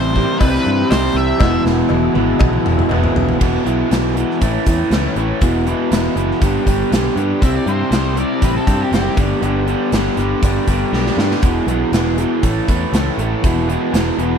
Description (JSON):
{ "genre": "classic rock", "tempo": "120 BPM", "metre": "4/4", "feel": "straight", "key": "unclear", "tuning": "A4 = 440 Hz", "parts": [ { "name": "octave-fuzz lead guitar", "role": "melody", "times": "0.0-1.6 s", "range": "B4 to E5", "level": "-22 LUFS", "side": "left 2 dB", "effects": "wah, distortion, slapback echo" }, { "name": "tonewheel organ", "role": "sustained chords", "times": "0.0-3.4 s", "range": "B3 to A4", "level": "-30 LUFS", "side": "equal", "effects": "none" }, { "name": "overdriven electric guitar", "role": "riff", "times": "0.0-14.4 s", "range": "E2 to A4", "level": "-20 LUFS", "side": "left 13 dB", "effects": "none" }, { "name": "overdriven electric guitar", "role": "riff", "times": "0.0-14.4 s", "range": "E2 to C4", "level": "-20 LUFS", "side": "right 14 dB", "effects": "none" }, { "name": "picked electric bass", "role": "bass", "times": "0.0-14.3 s", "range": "E1 to G2", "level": "-20 LUFS", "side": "equal", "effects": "none" }, { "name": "gated 80s drum kit", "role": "drums", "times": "0.2-14.3 s", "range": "crash cymbal, hi-hat, kick drum, snare drum, toms", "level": "-18 LUFS", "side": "equal", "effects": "none" }, { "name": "cowbell", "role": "percussion", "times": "0.4-3.0 s", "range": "none", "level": "-27 LUFS", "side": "left 9 dB", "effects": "none" }, { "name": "octave-fuzz lead guitar", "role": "second line", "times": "7.4-9.2 s", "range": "G4 to E5", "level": "-26 LUFS", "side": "left 4 dB", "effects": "distortion" } ], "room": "studio reverb", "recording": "none", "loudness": "-14 LUFS", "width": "side -7 dB against mid", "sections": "0.0-3.4 A section; 3.4-14.4 B section", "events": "drum fill 1.4-3.4, 10.9-11.4", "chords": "0.0 C; 1.4 E; 4.4 A; 5.4 E; 6.4 G; 7.4 C; 9.2 G; 11.4 E; 12.4 A; 13.4 E" }